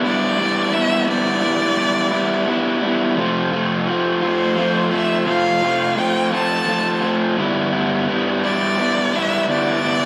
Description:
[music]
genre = rock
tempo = 57 BPM (dotted quarters)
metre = 6/8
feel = straight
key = unclear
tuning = A4 = 440 Hz
[part]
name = rich violin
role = melody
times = 0.0-10.1 s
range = C5 to A5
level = -24 LUFS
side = equal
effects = none
[part]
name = raw garage guitar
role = riff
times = 0.0-10.1 s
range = F2 to F4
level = -20 LUFS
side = equal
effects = overdrive
[sound]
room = wet large studio reverb, RT60 1.1 s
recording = band playing live in one room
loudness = -19 LUFS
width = mono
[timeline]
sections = 0.0-10.1 A section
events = none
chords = 0.0 G6; 3.2 F; 7.4 G6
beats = 0.03 | 1.08 2.13 | 3.18 4.22 | 5.28 6.33 | 7.38 8.43 | 9.48

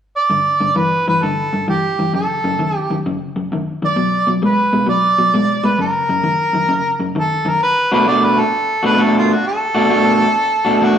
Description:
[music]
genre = blues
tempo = 131 BPM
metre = 4/4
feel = swing 67% on 8ths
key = B minor from 7.6 s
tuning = A4 = 439 Hz
[part]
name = mellow harmonica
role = melody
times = 0.2-11.0 s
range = E#4 to D5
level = -16 LUFS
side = right 1 dB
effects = overdrive
[part]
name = electric guitar through a small old amp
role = riff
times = 0.3-11.0 s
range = F#2 to F#4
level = -17 LUFS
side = equal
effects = none
[sound]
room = wet stone room reverb, RT60 1.3 s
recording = band playing live in one room, faint mains hum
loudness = -14 LUFS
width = side -8 dB against mid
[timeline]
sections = 0.3-7.6 A section; 7.6-11.0 B section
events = none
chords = 0.3 G5; 2.1 F#m; 4.0 Bm; 5.8 F#; 7.6 Bm7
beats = | 0.30 0.76 1.22 1.67 | 2.13 2.58 3.04 3.50 | 3.96 4.41 4.87 5.33 | 5.78 6.24 6.70 7.15 | 7.61 8.07 8.52 8.98 | 9.44 9.89 10.35 10.81

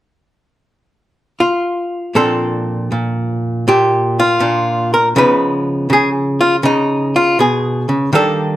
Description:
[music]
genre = solo jazz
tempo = 80 BPM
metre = 4/4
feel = swing 67% on 8ths, rubato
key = Bb major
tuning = A4 = 439 Hz
[part]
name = archtop guitar, miked and amplified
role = solo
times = 1.4-8.6 s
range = Bb2 to Cb5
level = -12 LUFS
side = equal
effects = none
[sound]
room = moderate studio reverb, RT60 0.7 s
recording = none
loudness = -13 LUFS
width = side -14 dB against mid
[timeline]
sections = 0.0-2.1 A section; 2.1-8.6 B section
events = none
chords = 0.0 N.C.; 2.1 Bbmaj9; 5.2 Db9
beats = 0.64 1.39 | 2.15 2.92 3.67 4.42 | 5.17 5.91 6.65 7.40 | 8.15

